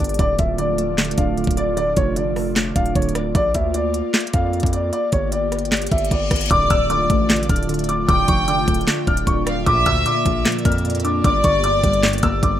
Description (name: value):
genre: hip hop, trap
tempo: 152 BPM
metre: 4/4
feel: half-time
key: D minor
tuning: A4 = 442 Hz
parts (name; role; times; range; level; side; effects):
- dark concert grand piano; melody; 0.0-12.6 s; C#5 to F6; -22 LUFS; left 1 dB; digital delay
- glassy digital keys; accompaniment; 0.0-3.4, 6.5-12.6 s; G2 to D5; -25 LUFS; equal; chorus
- airy breathy pad; sustained chords; 0.0-12.6 s; A3 to D5; -26 LUFS; right 1 dB; chorus
- distorted 808-style bass; bass; 0.0-12.6 s; D1 to F2; -24 LUFS; equal; distortion
- trap drum kit; drums; 0.0-12.5 s; handclaps, hi-hat, kick drum, rim click, snare drum; -21 LUFS; equal; overdrive
- reverse cymbal and impact; sound effects; 5.9-8.1 s; none; -30 LUFS; left 2 dB; none
- warm studio violin section; second line; 6.5-12.4 s; D5 to G5; -23 LUFS; left 1 dB; digital delay
room: little or no reverb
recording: rough home demo mix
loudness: -16 LUFS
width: side -11 dB against mid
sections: 0.0-6.5 A section; 6.5-12.6 B section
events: reverse cymbal 5.9-6.5; impact 6.5-8.1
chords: 0.2 Dm; 3.3 Bb; 4.9 Gm; 6.5 Dm; 9.7 Bb; 11.2 Gm